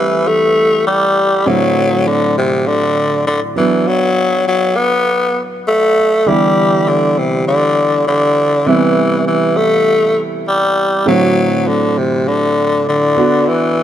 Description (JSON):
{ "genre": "pop", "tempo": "100 BPM", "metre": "4/4", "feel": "straight", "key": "unclear", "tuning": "A4 = 440 Hz", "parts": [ { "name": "growling tenor saxophone", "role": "melody", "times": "0.0-13.8 s", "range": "C3 to B3", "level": "-12 LUFS", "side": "left 1 dB", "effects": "none" }, { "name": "warm concert grand piano", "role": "accompaniment", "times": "0.0-13.8 s", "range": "A2 to G4", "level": "-17 LUFS", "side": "right 2 dB", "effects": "none" } ], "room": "moderate plate reverb, RT60 2.2 s", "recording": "none", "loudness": "-11 LUFS", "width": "side -10 dB against mid", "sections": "0.0-13.8 A section", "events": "none", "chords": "0.0 Am7; 1.5 D7/A; 3.6 Bm; 6.3 Em7; 8.7 Cmaj7; 11.1 D7/A; 13.2 Bm" }